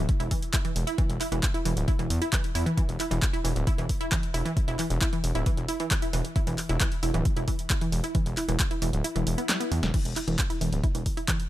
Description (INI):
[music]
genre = driving peak-time techno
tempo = 134 BPM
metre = 4/4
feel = straight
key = unclear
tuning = A4 = 440 Hz
[part]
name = wide unison pluck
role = riff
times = 0.0-11.3 s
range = D3 to E4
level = -31 LUFS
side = right 1 dB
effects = tube saturation, sidechain pumping, ping-pong delay
[part]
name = gritty driven synth bass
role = bass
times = 0.0-11.0 s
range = D1 to E2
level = -28 LUFS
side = equal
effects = sidechain pumping
[part]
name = electronic kick drum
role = drums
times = 0.1-11.4 s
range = none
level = -27 LUFS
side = equal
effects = overdrive
[part]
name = punchy analog drum machine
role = drums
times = 0.1-11.5 s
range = crash cymbal, handclaps, hi-hat, snare drum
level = -32 LUFS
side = equal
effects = overdrive, sidechain pumping on hats, sidechain pumping on cymbals
[part]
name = swell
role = sound effects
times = 9.2-9.9 s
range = none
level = -37 LUFS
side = left 5 dB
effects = none
[sound]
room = little or no reverb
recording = none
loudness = -24 LUFS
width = side -14 dB against mid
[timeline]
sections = 0.0-11.5 A section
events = kick drops out 9.0-9.9; swell 9.2-9.9; drum fill 9.5-9.9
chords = none